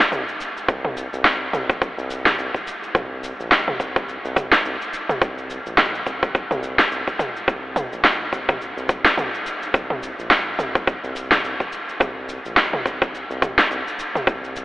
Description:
organic downtempo; 106 BPM; 4/4; swing 57% on 16ths; A4 = 440 Hz
round analog bass; bass; 0.0-14.6 s; Bb1 to C2; -33 LUFS; equal; sidechain pumping
deep house drum kit; drums; 0.0-14.6 s; shaker, snare drum, toms; -22 LUFS; equal; studio reverb
electronic kick drum; drums; 0.7-14.4 s; -22 LUFS; equal; studio reverb
moderate huge ambient reverb, RT60 8.4 s; dreamy mix soaked in reverb, telephone sound; -19 LUFS; side -18 dB against mid
0.0-14.6 A section
0.12 | 0.69 1.25 1.82 2.38 | 2.95 3.52 4.08 4.65 | 5.21 5.78 6.35 6.91 | 7.48 8.04 8.61 9.18 | 9.74 10.31 10.88 11.44 | 12.01 12.57 13.14 13.71 | 14.27

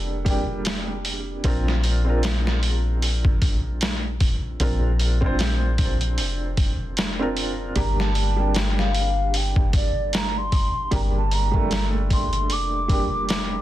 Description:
trip hop; 76 BPM; 4/4; swing 57% on 16ths; G minor; A4 = 441 Hz
felt-muted upright piano; accompaniment; 0.0-13.6 s; G3 to C5; -29 LUFS; right 2 dB; tremolo, low-pass filter, tape echo
soft 808-style bass; bass; 0.0-13.6 s; F1 to Bb1; -24 LUFS; equal
trip hop sampler-style drum kit; drums; 0.3-13.5 s; hi-hat, kick drum, snare drum; -24 LUFS; equal
mellow hollow baroque flute; melody; 7.8-13.6 s; D5 to D6; -27 LUFS; equal; tape echo
little or no reverb; dense, heavily limited modern master; -20 LUFS; side -14 dB against mid
0.0-13.6 A section
0.0 Gm; 1.4 Bbadd9; 7.8 Gm
0.66 | 1.45 2.23 3.02 3.81 | 4.60 5.39 6.18 6.97 | 7.76 8.55 9.34 10.13 | 10.92 11.71 12.50 13.29

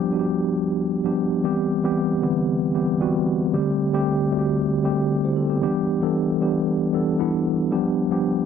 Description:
disco; 115 BPM; 4/4; straight; A4 = 440 Hz
mellow tine electric piano; solo; 0.0-8.5 s; D3 to C5; -20 LUFS; equal; medium stereo tremolo
light reverb; dry, close 1970s-style studio recording; -20 LUFS; side -7 dB against mid
0.0-1.4 A section; 1.4-8.5 B section
0.0 G7; 1.4 Cmaj7; 3.5 D7sus4; 5.6 Em7; 7.7 G7
0.39 0.92 | 1.44 1.97 2.49 3.02 | 3.54 4.06 4.58 5.11 | 5.63 6.15 6.67 7.20 | 7.72 8.24

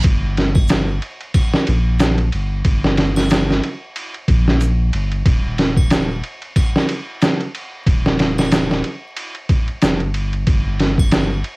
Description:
trip hop; 92 BPM; 4/4; swing 57% on 16ths; G minor; A4 = 438 Hz
soft dub sub bass; bass; 0.0-11.4 s; Eb1 to Bb1; -19 LUFS; equal
trip hop sampler-style drum kit; drums; 0.0-11.6 s; kick drum, ride cymbal, snare drum; -16 LUFS; equal; cassette tape
triangle and egg shaker; percussion; 0.5-11.3 s; -35 LUFS; equal
light reverb; home recording on cassette, vinyl crackle; -15 LUFS; side -26 dB against mid
0.0-11.6 A section
| 0.04 0.69 1.35 2.00 | 2.65 3.30 3.96 4.61 | 5.26 5.91 6.56 7.22 | 7.87 8.52 9.17 9.82 | 10.48 11.13

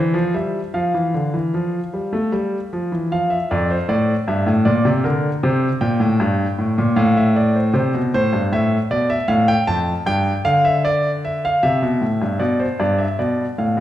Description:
classical, baroque-style two-part invention for grand piano; 77 BPM; 3/4; straight; F major; A4 = 440 Hz
clear grand piano; solo; 0.0-13.8 s; F2 to A5; -16 LUFS; equal
wet recital hall reverb, RT60 1.5 s; heard from further back in the room; -16 LUFS; side -12 dB against mid
0.0-3.1 A section; 3.1-12.4 B section; 12.4-13.8 A section
0.0 C/E; 0.7 N.C.; 3.1 F; 4.7 Bb; 5.4 C5; 7.0 F/A; 7.7 C; 9.3 F/A; 10.1 G5; 11.6 C; 12.4 G7
| 0.73 1.53 2.32 | 3.11 3.89 4.66 | 5.43 6.20 6.97 | 7.74 8.51 9.29 | 10.07 10.85 11.63 | 12.42 13.20

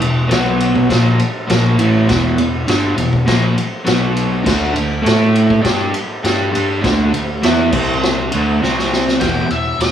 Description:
garage rock duo or trio; 101 BPM; 4/4; straight; E minor; A4 = 441 Hz
crunchy overdriven guitar; riff; 0.0-9.5 s; E2 to A4; -16 LUFS; equal; spring reverb
fuzz picked electric bass; bass; 0.0-9.9 s; E1 to A2; -19 LUFS; equal; overdrive
vintage drum kit; drums; 0.0-9.9 s; crash cymbal, kick drum, ride cymbal, snare drum; -18 LUFS; equal
octave-fuzz lead guitar; melody; 9.2-9.9 s; E5 to G5; -20 LUFS; left 2 dB; distortion
light reverb; band playing live in one room; -13 LUFS; side -9 dB against mid
0.0-9.2 A section
drum fill 8.6-9.2
0.3 B5; 0.9 Em; 3.9 B5; 4.5 D5; 5.1 A5; 5.6 D5; 7.7 C5; 8.3 D5; 8.6 C5; 9.2 Em
0.31 0.90 1.49 | 2.08 2.68 3.27 3.86 | 4.46 5.05 5.64 6.24 | 6.83 7.43 8.03 8.62 | 9.22 9.82

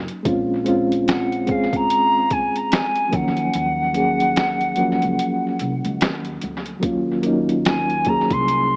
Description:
lo-fi hip hop; 73 BPM; 4/4; swing 60% on 16ths; Eb dorian; A4 = 440 Hz
mellow reed electric piano; accompaniment; 0.0-8.8 s; F3 to Ab4; -24 LUFS; equal; fast tremolo, cassette tape, low-pass filter, tape echo
upright bass; bass; 0.0-8.8 s; Ab1 to Eb2; -32 LUFS; equal
boom bap sampler-style drum kit; drums; 0.1-8.7 s; finger snaps, hi-hat, kick drum, snare drum; -27 LUFS; equal; tape echo
silver concert flute; melody; 1.1-8.8 s; F5 to C6; -23 LUFS; equal; low-pass filter, tape echo
moderate spring reverb, RT60 1.9 s, small room ambience; echo-heavy mix, cassette tape, small speaker sound; -20 LUFS; mono
0.0-6.8 A section; 6.8-8.8 A section
break 0.0; kick muted 3.5-6.8
0.3 Bbm9; 3.1 Ebm9
| 0.26 1.08 1.90 2.72 | 3.54 4.36 5.19 6.01 | 6.83 7.65 8.47

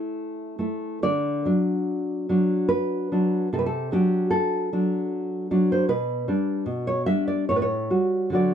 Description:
romantic piece for solo classical guitar; 74 BPM; 3/4; uneven beats, rubato; D major; A4 = 438 Hz
nylon-string guitar; solo; 0.0-8.5 s; A2 to E5; -22 LUFS; equal
small room ambience; dry, close 1970s-style studio recording; -22 LUFS; side -8 dB against mid
0.0-8.5 A section
0.0 A5; 1.0 D; 3.5 D7/C; 5.9 G/B; 7.5 A6
0.16 | 1.02 1.87 2.69 | 3.50 4.30 5.11 | 5.89 6.67 7.48 | 8.34

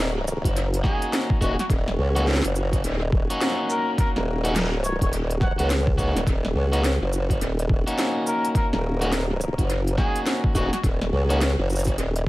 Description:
glitch hop; 105 BPM; 4/4; swing 61% on 16ths; Eb minor; A4 = 440 Hz
formant-sweep wobble bass; bass; 0.0-12.3 s; Eb1 to Db2; -23 LUFS; equal; chorus
drum and bass drum kit; drums; 0.3-12.2 s; hi-hat, shaker, snare drum; -29 LUFS; equal; dub echo
electronic kick drum; drums; 0.4-12.3 s; -23 LUFS; equal; overdrive
mellow trumpet; melody; 0.8-10.8 s; Gb4 to Gb5; -32 LUFS; left 1 dB; dub echo
electric guitar at the edge of break-up; stabs; 0.8-11.4 s; Bb3 to Gb4; -29 LUFS; equal; sidechain pumping, dub echo
light reverb; echo-heavy mix, vinyl crackle; -20 LUFS; side -18 dB against mid
0.0-12.3 A section
0.0 Ebm7
0.56 1.13 | 1.70 2.27 2.84 3.41 | 3.98 4.56 5.13 5.70 | 6.27 6.84 7.41 7.99 | 8.56 9.13 9.70 10.27 | 10.84 11.41 11.98

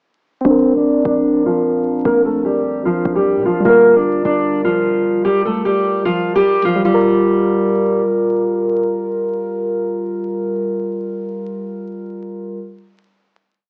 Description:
hip hop, trap; 150 BPM; 4/4; half-time; G minor; A4 = 440 Hz
muted felt-like synth keys; accompaniment; 0.4-12.6 s; G3 to Bb4; -19 LUFS; equal; chorus, low-pass filter
fingerpicked steel-string acoustic guitar; melody; 0.5-8.0 s; F3 to D5; -18 LUFS; equal; low-pass filter, cassette tape
hard-hitting 808-style bass; bass; 0.5-5.2 s; G1 to Bb2; -32 LUFS; equal
light reverb, studio ambience; home recording on cassette, vinyl crackle, small speaker sound; -16 LUFS; mono
0.5-6.9 breakdown; 6.9-10.1 final chord
filter sweep 0.5-6.9
0.5 Bbadd9; 3.7 Gm7
| 0.45 0.85 1.25 1.65 | 2.05 2.45 2.85 3.25 | 3.65 4.05 4.45 4.85 | 5.25 5.65 6.05 6.45 | 6.85 7.25 7.65 8.05 | 8.45 8.85 9.25 9.65

